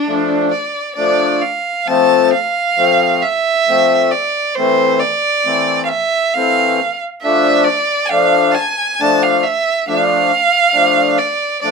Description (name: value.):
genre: klezmer.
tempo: 68 BPM.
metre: 3/4.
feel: straight.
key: D minor.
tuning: A4 = 440 Hz.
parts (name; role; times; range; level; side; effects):
rich violin; melody; 0.0-11.7 s; D4 to A5; -14 LUFS; right 3 dB; none.
accordion; accompaniment; 0.1-11.7 s; E3 to D4; -15 LUFS; left 4 dB; none.
room: wet small room reverb, RT60 0.5 s.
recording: minimal, uncompressed stereo recording.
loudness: -12 LUFS.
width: side -5 dB against mid.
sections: 0.0-1.9 A section; 1.9-11.7 B section.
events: speeding up 0.0-11.7.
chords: 0.0 Dm; 1.9 F; 4.6 Am; 7.2 Dm.